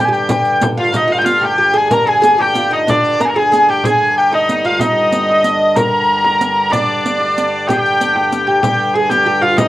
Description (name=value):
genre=medieval dance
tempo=125 BPM (dotted quarters)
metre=6/8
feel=straight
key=G phrygian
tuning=A4 = 444 Hz
part: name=warm hurdy-gurdy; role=melody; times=0.0-9.7 s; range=D5 to Bb5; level=-13 LUFS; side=equal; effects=cassette tape
part: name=edgy shawm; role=second line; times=0.0-9.7 s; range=D4 to Bb4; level=-22 LUFS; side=left 3 dB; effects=cassette tape
part: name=oud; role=second line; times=0.0-9.7 s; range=D4 to Bb4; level=-20 LUFS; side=right 2 dB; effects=cassette tape
part: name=pedal harmonium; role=drone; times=0.0-9.7 s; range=G2 to D3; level=-23 LUFS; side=left 1 dB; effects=cassette tape
part: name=riq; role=percussion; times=0.1-9.7 s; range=none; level=-24 LUFS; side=right 3 dB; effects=none
part: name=frame drum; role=percussion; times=0.3-9.7 s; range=none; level=-22 LUFS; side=left 1 dB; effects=none
room=wet small room reverb, RT60 0.5 s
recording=home recording on cassette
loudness=-11 LUFS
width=side -15 dB against mid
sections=0.9-8.6 A section; 8.6-9.7 B section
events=none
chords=none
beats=0.46 | 0.95 1.43 | 1.92 2.40 | 2.88 3.37 | 3.85 4.33 | 4.81 5.29 | 5.77 6.25 | 6.73 7.20 | 7.68 8.16 | 8.63 9.11 | 9.58